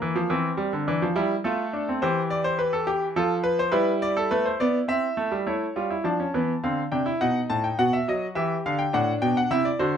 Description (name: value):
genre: classical, baroque-style 3-part fugue for grand piano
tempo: 104 BPM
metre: 3/4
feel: straight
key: unclear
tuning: A4 = 440 Hz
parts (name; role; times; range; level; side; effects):
- bright concert grand piano; solo; 0.0-10.0 s; A2 to A5; -22 LUFS; equal; none
room: moderate small room reverb, RT60 0.5 s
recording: none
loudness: -22 LUFS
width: side -8 dB against mid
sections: 0.0-5.5 A section; 5.5-10.0 B section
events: none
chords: 0.3 C7; 1.4 F/A; 2.0 C/E; 3.2 F; 3.7 G; 4.9 C; 5.5 A7; 6.6 Dm; 7.2 B7; 8.4 Em; 8.9 D7/A